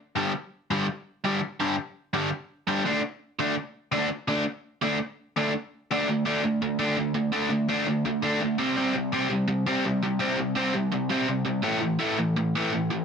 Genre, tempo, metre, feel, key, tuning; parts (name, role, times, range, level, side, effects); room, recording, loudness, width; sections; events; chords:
punk; 167 BPM; 4/4; straight; A4 = 440 Hz
biting overdriven guitar; solo; 0.2-13.0 s; G2 to D4; -24 LUFS; equal
moderate studio reverb, RT60 0.6 s; heavily compressed radio sound; -24 LUFS; side -6 dB against mid
0.0-5.9 A section; 5.9-13.0 B section
half time 0.0-5.9
0.2 G5; 2.9 D5; 8.6 C5; 11.7 A5